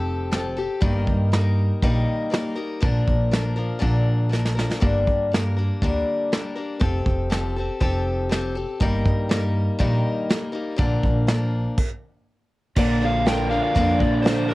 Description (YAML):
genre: folk rock and heartland rock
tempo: 120 BPM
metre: 4/4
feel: straight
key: unclear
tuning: A4 = 439 Hz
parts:
  - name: picked acoustic archtop guitar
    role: accompaniment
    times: 0.0-14.5 s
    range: G2 to Bb4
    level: -25 LUFS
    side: left 2 dB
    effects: cassette tape, plate reverb
  - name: upright bass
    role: bass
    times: 0.0-14.5 s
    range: F1 to G2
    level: -23 LUFS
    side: equal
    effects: none
  - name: soft brush drum kit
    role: drums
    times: 0.3-14.5 s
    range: crash cymbal, hi-hat, kick drum, snare drum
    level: -23 LUFS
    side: right 1 dB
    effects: cassette tape
  - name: lead guitar through a small cranked amp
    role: melody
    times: 12.8-14.5 s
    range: Bb4 to G5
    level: -24 LUFS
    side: left 1 dB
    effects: overdrive, plate reverb, analog delay
  - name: bright tonewheel organ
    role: sustained chords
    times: 12.8-14.5 s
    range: F3 to Bb4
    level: -38 LUFS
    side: right 1 dB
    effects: none
  - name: crunchy overdriven guitar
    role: riff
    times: 12.8-14.5 s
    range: Bb2 to D4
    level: -24 LUFS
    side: right 2 dB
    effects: cassette tape
room: little or no reverb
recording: home recording on cassette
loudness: -20 LUFS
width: side -19 dB against mid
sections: 0.0-12.8 A section; 12.8-14.5 B section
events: drum fill 4.3-4.8; stop 11.8-12.8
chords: 0.0 Fadd9; 0.8 Eb/G; 2.8 Bb; 4.8 Gm; 6.8 Fadd9; 8.8 Eb/G; 10.8 Bb